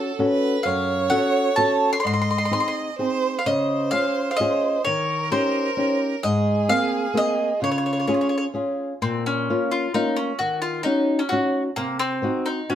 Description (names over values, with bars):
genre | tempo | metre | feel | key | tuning
italian folk, Italian serenade | 130 BPM | 3/4 | straight | Db major, Bb minor from 9.0 s | A4 = 440 Hz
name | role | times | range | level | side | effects
rich violin | second line | 0.0-8.8 s | F4 to Eb5 | -27 LUFS | right 5 dB | none
flamenco guitar | accompaniment | 0.0-12.8 s | Gb2 to A4 | -23 LUFS | left 1 dB | none
mandolin | melody | 0.6-12.8 s | Bb3 to C6 | -24 LUFS | equal | none
room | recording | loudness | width
moderate studio reverb, RT60 0.7 s | band playing live in one room | -20 LUFS | side -10 dB against mid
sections
0.0-9.0 A section; 9.0-12.8 B section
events
none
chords
0.0 A6; 0.7 Gbm; 2.1 Ab; 3.5 Db; 4.9 Eb7; 6.2 Abadd9; 7.6 Db; 9.0 Bbm; 10.4 Ebm7; 11.8 Cdim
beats
0.20 | 0.66 1.12 1.58 | 2.05 2.52 2.99 | 3.46 3.93 4.39 | 4.86 5.32 5.78 | 6.23 6.69 7.15 | 7.61 8.08 8.55 | 9.02 9.49 9.95 | 10.40 10.86 11.32 | 11.78 12.23 12.69